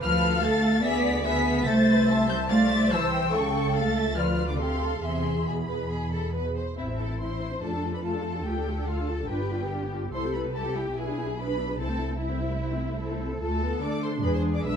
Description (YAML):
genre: quick classical-period movement for string orchestra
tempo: 144 BPM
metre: 4/4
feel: rubato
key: A minor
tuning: A4 = 440 Hz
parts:
  - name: warm studio violin section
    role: melody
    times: 0.0-14.8 s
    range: E5 to B6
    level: -33 LUFS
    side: left 3 dB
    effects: none
  - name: warm studio violin section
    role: second line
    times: 0.0-14.8 s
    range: E4 to A5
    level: -32 LUFS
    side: left 3 dB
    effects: none
  - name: rich studio viola section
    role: accompaniment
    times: 0.0-14.8 s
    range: G3 to E5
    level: -31 LUFS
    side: equal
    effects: none
  - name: warm studio cello section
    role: bass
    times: 0.0-14.8 s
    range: B2 to B4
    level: -28 LUFS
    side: right 1 dB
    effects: none
  - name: warm studio double bass section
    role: bass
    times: 0.0-14.8 s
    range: G1 to D3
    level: -31 LUFS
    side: right 1 dB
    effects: none
room: light reverb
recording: dark, warm production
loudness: -24 LUFS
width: side -7 dB against mid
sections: 0.0-6.8 A section; 6.8-14.8 B section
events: none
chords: 0.0 Bm7b5/D; 0.8 E7/D; 1.7 Am/C; 3.3 A7/C#; 4.2 Dm; 5.0 E; 6.8 Am; 7.6 Dm/F; 8.5 Dm; 9.3 G7; 10.1 C; 11.0 E7/B; 11.8 Am/C; 13.4 Dm; 14.2 E